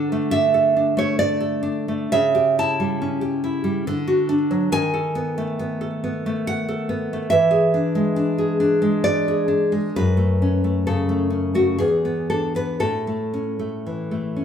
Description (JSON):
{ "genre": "romantic piece for solo classical guitar", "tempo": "56-72 BPM", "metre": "3/4", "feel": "rubato", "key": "A major", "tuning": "A4 = 441 Hz", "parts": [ { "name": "nylon-string guitar", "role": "solo", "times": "0.0-14.4 s", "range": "E2 to A5", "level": "-18 LUFS", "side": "equal", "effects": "slapback echo" } ], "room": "wet large studio reverb, RT60 1.1 s", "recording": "band playing live in one room", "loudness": "-18 LUFS", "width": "side -8 dB against mid", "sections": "0.0-14.4 A section", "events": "none", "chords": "0.0 D; 2.1 A7/C#; 3.9 D; 4.7 B7/D#; 7.3 E7; 9.9 F#m; 11.8 E7; 12.8 A" }